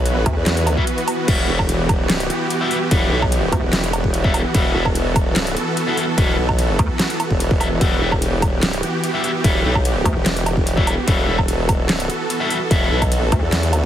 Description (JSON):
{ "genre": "heavy wobble dubstep", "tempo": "147 BPM", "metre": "4/4", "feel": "half-time", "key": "E minor", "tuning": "A4 = 440 Hz", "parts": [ { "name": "supersaw chords", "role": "sustained chords", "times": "0.0-13.9 s", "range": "E3 to B4", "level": "-23 LUFS", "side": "right 1 dB", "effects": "sidechain pumping" }, { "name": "formant-sweep wobble bass", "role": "bass", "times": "0.0-13.8 s", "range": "E1 to E2", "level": "-20 LUFS", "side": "equal", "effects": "chorus, overdrive" }, { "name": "dubstep drum kit", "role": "drums", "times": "0.1-13.8 s", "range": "crash cymbal, handclaps, hi-hat, ride cymbal, snare drum, woodblock", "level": "-24 LUFS", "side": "right 1 dB", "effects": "overdrive" }, { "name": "pulsing pluck wobble bass", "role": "bass", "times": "0.3, 3.5-3.6, 6.8-6.9, 10.1, 13.3-13.4 s", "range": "D2", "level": "-19 LUFS", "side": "equal", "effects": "chorus, overdrive" }, { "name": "electronic kick drum", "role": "drums", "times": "0.3-13.9 s", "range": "none", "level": "-20 LUFS", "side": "equal", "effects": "overdrive" }, { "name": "distorted electric guitar", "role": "stabs", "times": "0.8-13.0 s", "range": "G3 to E5", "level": "-25 LUFS", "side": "left 3 dB", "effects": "distortion, ping-pong delay" } ], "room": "light reverb", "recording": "heavily compressed radio sound, multiband compression", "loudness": "-16 LUFS", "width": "side -11 dB against mid", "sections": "0.0-13.9 A section", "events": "break 0.9-1.3", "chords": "0.0 Emadd9", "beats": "0.06 0.46 0.87 | 1.28 1.69 2.10 2.50 | 2.91 3.32 3.73 4.14 | 4.55 4.95 5.36 5.77 | 6.18 6.59 7.00 7.40 | 7.81 8.22 8.63 9.04 | 9.44 9.85 10.26 10.67 | 11.08 11.48 11.89 12.30 | 12.71 13.12 13.53" }